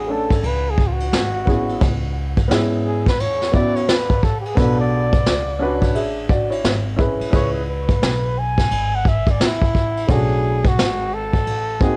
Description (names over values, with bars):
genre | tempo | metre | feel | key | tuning
hip hop, jazz-hop | 87 BPM | 4/4 | swing 62% on 16ths | B dorian | A4 = 440 Hz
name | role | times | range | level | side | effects
breathy flugelhorn | melody | 0.0-12.0 s | E4 to G#5 | -26 LUFS | equal | cassette tape, analog delay
warm upright piano | accompaniment | 0.0-12.0 s | A3 to E5 | -24 LUFS | equal | cassette tape
upright bass | bass | 0.0-12.0 s | G#1 to G#2 | -27 LUFS | equal | none
vintage brush drum kit | drums | 0.3-12.0 s | hi-hat, kick drum, ride cymbal, snare drum | -22 LUFS | equal | vintage 12-bit sampler grit, cassette tape
room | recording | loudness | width
moderate booth ambience, RT60 0.2 s | home recording on cassette | -19 LUFS | mono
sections
0.0-10.1 A section; 10.1-12.0 B section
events
flugelhorn solo 0.0-10.1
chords
0.0 Bm9; 1.1 E69/G#; 1.8 C#m7; 4.6 Bm9; 6.6 E6/G#; 7.3 C#m7; 10.1 Bm9